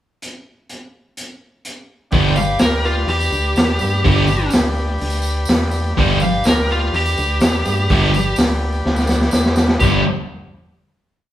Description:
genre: garage rock duo or trio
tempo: 125 BPM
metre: 4/4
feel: straight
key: G major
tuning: A4 = 439 Hz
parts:
  - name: crunchy breakbeat drum kit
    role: drums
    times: 0.2-9.9 s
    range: crash cymbal, hi-hat, kick drum, snare drum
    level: -19 LUFS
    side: equal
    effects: none
  - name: overdriven combo organ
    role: sustained chords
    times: 2.1-10.0 s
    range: D4 to B4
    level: -26 LUFS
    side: left 1 dB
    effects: none
  - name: thick fuzz guitar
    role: riff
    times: 2.1-10.0 s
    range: G2 to G3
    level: -17 LUFS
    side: right 1 dB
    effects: distortion
  - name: solid FM bass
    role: bass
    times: 2.1-10.0 s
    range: G1 to G2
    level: -21 LUFS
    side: equal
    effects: overdrive
  - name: fuzz lead guitar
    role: melody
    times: 2.4-10.0 s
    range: F4 to F5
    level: -20 LUFS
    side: equal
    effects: distortion
  - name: tambourine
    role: percussion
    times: 2.4-10.0 s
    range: none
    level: -31 LUFS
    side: equal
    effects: none
room: moderate large studio reverb, RT60 1.0 s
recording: band playing live in one room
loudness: -14 LUFS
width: side -12 dB against mid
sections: 0.2-2.1 pickup bar; 2.1-9.8 verse; 9.8-11.3 final chord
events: drum fill 8.9-9.8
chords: 0.2 N.C.; 2.1 G

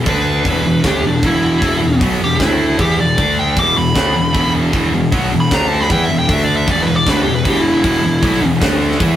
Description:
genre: hard rock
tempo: 154 BPM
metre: 4/4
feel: straight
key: unclear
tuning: A4 = 439 Hz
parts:
  - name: scooped high-gain guitar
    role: riff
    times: 0.0-9.2 s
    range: E2 to E4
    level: -17 LUFS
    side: equal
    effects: distortion
  - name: fuzz picked electric bass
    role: bass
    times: 0.0-9.2 s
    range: E1 to E2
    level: -18 LUFS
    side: equal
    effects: overdrive
  - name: dark smooth lead guitar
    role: melody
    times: 0.1-8.5 s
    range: D4 to D6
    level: -17 LUFS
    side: equal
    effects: overdrive
  - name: tight metal drum kit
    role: drums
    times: 0.1-9.1 s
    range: hi-hat, kick drum, snare drum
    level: -20 LUFS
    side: equal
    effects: none
room: moderate studio reverb, RT60 0.6 s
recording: rough rehearsal-room recording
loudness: -12 LUFS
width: side -11 dB against mid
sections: 0.0-9.2 A section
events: lead electric guitar solo 0.0-9.2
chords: 0.1 D5; 0.5 E5; 2.4 D5; 2.8 E5; 3.2 D5; 3.6 E5; 5.5 D5; 5.9 E5; 6.3 D5; 6.7 E5; 8.6 D5

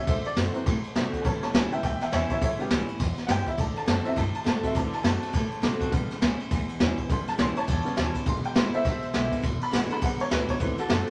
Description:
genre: rockabilly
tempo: 205 BPM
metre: 4/4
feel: swing 60% on 8ths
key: A mixolydian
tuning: A4 = 440 Hz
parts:
  - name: honky-tonk upright piano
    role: accompaniment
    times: 0.0-11.1 s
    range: C#3 to C6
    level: -33 LUFS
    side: equal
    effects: none
  - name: picked steel-string acoustic guitar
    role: accompaniment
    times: 0.0-11.1 s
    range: E2 to F#4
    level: -35 LUFS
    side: equal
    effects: none
  - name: upright bass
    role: bass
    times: 0.1-11.1 s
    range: E1 to C3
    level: -35 LUFS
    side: equal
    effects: none
  - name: jazz brush drum kit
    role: drums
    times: 0.1-11.1 s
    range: kick drum, ride cymbal, snare drum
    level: -29 LUFS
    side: equal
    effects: none
room: moderate studio reverb, RT60 0.9 s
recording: none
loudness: -27 LUFS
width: mono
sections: 0.0-11.1 A section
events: honky-tonk piano solo 0.0-11.1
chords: 0.1 D7; 1.2 A7; 3.6 D7; 5.9 A7; 8.3 E7

